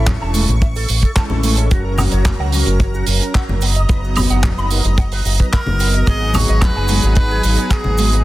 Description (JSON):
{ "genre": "nu-disco, nu disco", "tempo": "110 BPM", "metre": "4/4", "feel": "straight", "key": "G# minor", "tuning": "A4 = 444 Hz", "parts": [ { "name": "edgy tenor saxophone", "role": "melody", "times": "0.0-0.1, 5.5-8.2 s", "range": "G#4 to D#5", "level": "-23 LUFS", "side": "equal", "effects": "tape echo" }, { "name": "mellow synth brass", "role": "accompaniment", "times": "0.0-8.2 s", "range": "F#3 to A#4", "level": "-23 LUFS", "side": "equal", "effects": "chorus, vintage 12-bit sampler grit, sidechain pumping" }, { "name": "lush unison pad", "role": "sustained chords", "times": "0.0-8.2 s", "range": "F#3 to C#6", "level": "-28 LUFS", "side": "equal", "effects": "chorus, sidechain pumping" }, { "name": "electric guitar with an envelope filter", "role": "riff", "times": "0.0-8.2 s", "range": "F#3 to B5", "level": "-26 LUFS", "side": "right 2 dB", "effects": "ensemble chorus" }, { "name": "fingered electric bass with an envelope filter", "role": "bass", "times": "0.0-8.2 s", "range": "E1 to C#2", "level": "-17 LUFS", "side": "equal", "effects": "sidechain pumping" }, { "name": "damped 70s drum kit", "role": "drums", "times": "0.1-8.2 s", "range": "handclaps, hi-hat, woodblock", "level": "-22 LUFS", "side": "right 4 dB", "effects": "none" }, { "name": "kick drum", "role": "drums", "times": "0.1-7.8 s", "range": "none", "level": "-15 LUFS", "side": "equal", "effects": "none" }, { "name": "cabasa and congas", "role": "percussion", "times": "0.1-8.2 s", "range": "none", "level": "-25 LUFS", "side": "left 1 dB", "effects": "none" } ], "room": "light reverb", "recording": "dense, heavily limited modern master", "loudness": "-13 LUFS", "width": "side -16 dB against mid", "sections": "0.0-8.2 A section", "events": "none", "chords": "0.0 Amaj7; 1.7 F#; 3.6 Bmaj7/F#; 6.1 G#m7", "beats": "0.07 0.62 1.17 | 1.71 2.25 2.80 3.35 | 3.89 4.44 4.98 5.53 | 6.07 6.62 7.17 7.71" }